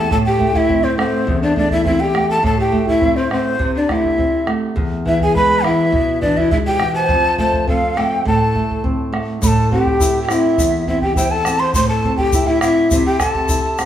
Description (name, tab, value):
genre	andean folk, Andean ensemble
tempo	103 BPM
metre	2/4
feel	straight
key	A minor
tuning	A4 = 440 Hz
part	breathy bright large quena	melody	0.0-13.8 s	C5 to C6	-19 LUFS	right 1 dB	none
part	breathy large pan pipes	second line	0.0-13.8 s	C4 to C5	-19 LUFS	left 3 dB	none
part	flamenco guitar	accompaniment	0.0-13.9 s	E2 to E4	-20 LUFS	right 2 dB	none
part	bombo	percussion	0.1-13.9 s	none	-22 LUFS	equal	none
part	tube shaker	percussion	9.4-13.9 s	none	-28 LUFS	left 5 dB	none
room	wet recital hall reverb, RT60 1.4 s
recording	recorded in a church or concert hall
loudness	-14 LUFS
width	side -10 dB against mid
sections	0.1-9.4 A section; 9.4-13.9 A section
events	none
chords	0.1 Am; 4.8 E; 7.1 F; 8.3 Am